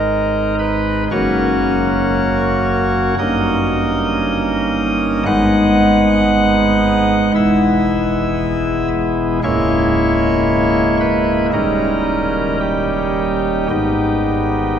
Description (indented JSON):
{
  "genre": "classical, chorale-style piece for pipe organ",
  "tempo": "57 BPM",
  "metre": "4/4",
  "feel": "rubato",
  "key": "G# minor",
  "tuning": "A4 = 439 Hz",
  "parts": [
    { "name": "pipe organ, cornet", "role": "solo", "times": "0.0-14.8 s", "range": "C#1 to F#5", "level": "-14 LUFS", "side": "equal", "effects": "none" }
  ],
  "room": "wet cathedral reverb, RT60 6.8 s",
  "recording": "heard from further back in the room",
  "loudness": "-14 LUFS",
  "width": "side -8 dB against mid",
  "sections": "0.0-14.8 A section",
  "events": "none",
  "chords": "0.0 G#m; 1.1 F#; 3.2 D#7/G; 5.3 G#m; 7.4 E; 9.4 A#m7b5/C#; 11.5 D#7; 13.7 G#m",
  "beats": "0.07 | 1.11 2.15 3.18 4.22 | 5.27 6.31 7.36 8.41 | 9.44 10.48 11.54 12.61 | 13.71"
}